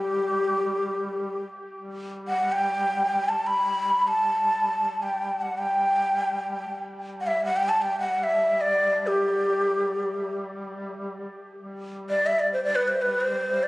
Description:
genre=Arabic maqam ensemble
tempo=free time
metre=none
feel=none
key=G maqam ajam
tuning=A4 = 440 Hz
part: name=breathy ney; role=melody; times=0.0-13.7 s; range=G4 to B5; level=-23 LUFS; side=equal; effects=plate reverb, tape echo
part: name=mellow duduk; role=drone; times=0.0-13.7 s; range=G3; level=-36 LUFS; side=equal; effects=none
room=moderate studio reverb, RT60 0.5 s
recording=recorded on a phone in the room, club reverb, compression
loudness=-22 LUFS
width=side -20 dB against mid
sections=0.0-1.8 A section; 1.8-11.6 A section; 11.6-13.7 A section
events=none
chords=none

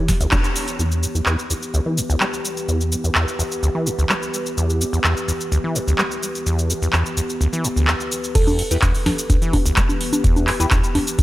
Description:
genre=acid house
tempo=127 BPM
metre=4/4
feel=straight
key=E minor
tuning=A4 = 440 Hz
part: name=warbly tape-like pad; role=sustained chords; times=0.0-11.2 s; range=E3 to C#5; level=-27 LUFS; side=equal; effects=chorus, built-in reverb, phaser, vintage 12-bit sampler grit, sidechain pumping
part: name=deep acid bass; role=riff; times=0.0-11.2 s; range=D2 to G3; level=-21 LUFS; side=equal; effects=overdrive, sidechain pumping
part: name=booming analog drum machine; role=drums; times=0.1-11.2 s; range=congas, crash cymbal, handclaps, hi-hat, shaker, snare drum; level=-22 LUFS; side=equal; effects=none
part: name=electronic kick drum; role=drums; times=0.1-0.4, 8.4-11.2 s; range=none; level=-18 LUFS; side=equal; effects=none
part: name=thumb-piano-like synth pluck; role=melody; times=8.4-9.0 s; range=A4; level=-28 LUFS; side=right 4 dB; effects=chorus, tape echo
part: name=filtered dub chord stab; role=stabs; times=8.7-10.7 s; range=E4 to B4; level=-28 LUFS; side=left 2 dB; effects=phaser, tape echo
room=light reverb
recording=none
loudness=-17 LUFS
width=side -16 dB against mid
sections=0.8-8.4 A section; 8.4-11.2 B section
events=band accent 0.3; drop 8.4-11.2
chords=0.0 Em

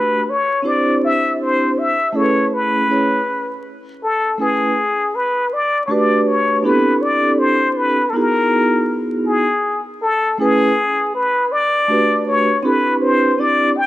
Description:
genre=hip hop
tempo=80 BPM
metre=4/4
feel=swing 64% on 16ths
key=unclear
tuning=A4 = 440 Hz
part: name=trumpet with plunger mute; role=melody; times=0.0-13.9 s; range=G#4 to G5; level=-16 LUFS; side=left 2 dB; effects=none
part: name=vibraphone with soft mallets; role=accompaniment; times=0.0-13.7 s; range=A3 to D5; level=-18 LUFS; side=right 2 dB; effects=none
room=light reverb, studio reverb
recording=dark, warm production, vinyl crackle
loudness=-14 LUFS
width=side -15 dB against mid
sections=0.0-4.0 A section; 4.0-13.9 B section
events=none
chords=0.0 A13; 0.6 Cadd9; 2.1 Amaj9; 5.5 Gmaj9#11; 6.6 Am7; 8.1 Emaj9#11/B; 10.0 Amaj9; 11.5 Gmaj9#11; 12.6 Cmaj9

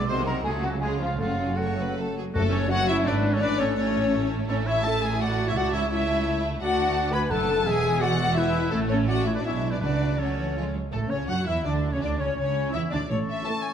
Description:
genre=quick classical-period movement for symphony orchestra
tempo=154-176 BPM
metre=3/4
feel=rubato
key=F# minor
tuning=A4 = 442 Hz
part: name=rich chamber violin section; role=melody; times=0.0-13.7 s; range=E#4 to B5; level=-31 LUFS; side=left 4 dB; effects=none
part: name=clear chamber violin section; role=second line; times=0.0-13.7 s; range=G#3 to C#5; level=-35 LUFS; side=right 1 dB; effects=none
part: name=clear oboe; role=second line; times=0.0-13.7 s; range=E4 to G#5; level=-34 LUFS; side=right 1 dB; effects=none
part: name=silver concert flute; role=second line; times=0.0-13.7 s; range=A4 to C#6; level=-32 LUFS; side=left 1 dB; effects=none
part: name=rich chamber viola section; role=accompaniment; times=0.0-13.7 s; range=D#3 to B4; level=-31 LUFS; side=equal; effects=none
part: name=mellow French horn section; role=sustained chords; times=0.0-13.7 s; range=G#3 to B4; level=-32 LUFS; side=left 4 dB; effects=none
part: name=warm chamber cello section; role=bass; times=0.0-13.4 s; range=C#2 to F#3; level=-30 LUFS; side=right 3 dB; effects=none
part: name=warm chamber double bass section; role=bass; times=0.0-13.4 s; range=E1 to F#2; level=-30 LUFS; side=right 3 dB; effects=none
part: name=timpani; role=percussion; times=2.4-2.9, 9.8-10.3 s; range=F#2 to C#3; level=-31 LUFS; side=right 1 dB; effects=none
room=moderate scoring stage reverb, RT60 1.8 s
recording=none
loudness=-22 LUFS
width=side -8 dB against mid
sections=0.0-2.3 A section; 2.3-10.9 B section; 10.9-13.7 B section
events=none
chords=0.1 G#7/B#; 0.4 F#m/C#; 0.8 C#; 1.2 F#m; 3.4 Aadd11; 4.5 A5; 5.6 A/C#; 6.6 D; 7.7 E; 8.7 A; 9.4 G#dim/B; 9.8 F#m/C#; 10.6 C#5; 10.9 F#m/A; 12.0 C#m; 13.1 A

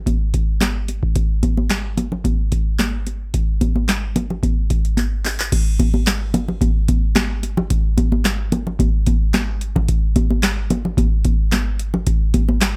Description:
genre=funk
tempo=110 BPM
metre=4/4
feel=straight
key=none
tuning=none
part: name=booming analog drum machine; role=drums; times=0.1-12.7 s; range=crash cymbal, handclaps, hi-hat, kick drum, snare drum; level=-20 LUFS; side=equal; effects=none
part: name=congas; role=percussion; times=0.1-12.7 s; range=none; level=-24 LUFS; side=equal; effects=none
room=little or no reverb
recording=none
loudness=-19 LUFS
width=mono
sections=0.0-5.5 A section; 5.5-12.8 B section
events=drum fill 5.0-5.5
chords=none

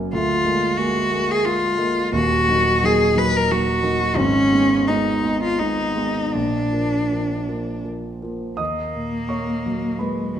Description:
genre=classical, romantic duo for cello and grand piano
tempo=76-92 BPM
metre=3/4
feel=rubato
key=Eb minor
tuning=A4 = 440 Hz
part: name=dark concert grand piano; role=accompaniment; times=0.0-10.4 s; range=Eb1 to Eb6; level=-22 LUFS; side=right 2 dB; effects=none
part: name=rich cello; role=melody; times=0.1-10.4 s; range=Gb3 to Cb5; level=-20 LUFS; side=left 1 dB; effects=none
room=wet recital hall reverb, RT60 1.5 s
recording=none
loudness=-18 LUFS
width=side -9 dB against mid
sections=0.0-8.6 A section; 8.6-10.4 B section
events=none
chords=0.1 Bb7/D; 2.1 Ebm; 4.2 Abm; 6.3 Bb; 8.6 Ebm

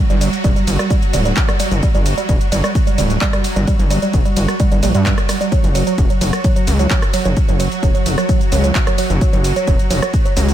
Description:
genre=driving peak-time techno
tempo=130 BPM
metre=4/4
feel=straight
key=unclear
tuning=A4 = 440 Hz
part: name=swarming drone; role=drone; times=0.0-10.5 s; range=F#3 to F#4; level=-24 LUFS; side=right 1 dB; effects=built-in reverb, wide subtle chorus, sidechain pumping
part: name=woody wave-folded pluck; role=riff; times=0.1-10.5 s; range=F#3 to G3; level=-20 LUFS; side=right 3 dB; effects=chorus, sidechain pumping, analog delay
part: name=gritty driven synth bass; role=bass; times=0.1-10.5 s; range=D1 to G2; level=-17 LUFS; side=equal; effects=sidechain pumping
part: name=techno drum kit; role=drums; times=0.1-10.5 s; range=handclaps, hi-hat, ride cymbal, rim click, shaker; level=-24 LUFS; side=equal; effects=none
part: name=electronic kick drum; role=drums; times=0.4-10.2 s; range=none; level=-16 LUFS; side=equal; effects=none
room=light reverb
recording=none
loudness=-13 LUFS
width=side -11 dB against mid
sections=0.0-10.5 A section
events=none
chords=0.0 G5; 5.5 F#5

